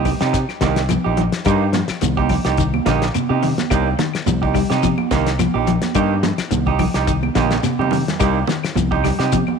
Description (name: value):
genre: afrobeat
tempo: 107 BPM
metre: 4/4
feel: swing 55% on 16ths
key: C minor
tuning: A4 = 440 Hz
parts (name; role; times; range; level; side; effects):
- electric guitar through a small old amp; stabs; 0.0-9.4 s; Bb3 to G4; -22 LUFS; right 11 dB; none
- fingered electric bass; bass; 0.0-9.4 s; Bb1 to C3; -21 LUFS; left 1 dB; none
- semi-hollow electric guitar; arpeggios; 0.1-9.5 s; C3 to G3; -23 LUFS; left 12 dB; none
- cloth-damped thuddy drum kit; drums; 0.1-9.5 s; hi-hat, kick drum, snare drum; -24 LUFS; left 3 dB; none
- claves; percussion; 0.1-9.6 s; none; -33 LUFS; left 15 dB; none
- congas; percussion; 0.1-9.6 s; none; -24 LUFS; right 13 dB; none
- shekere; percussion; 0.1-9.5 s; none; -26 LUFS; left 5 dB; none
room: light reverb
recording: 1960s-style stereo with parts hard left and right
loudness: -16 LUFS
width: side -6 dB against mid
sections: 0.0-9.6 A section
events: drum fill 7.4-8.2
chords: 0.0 Cm7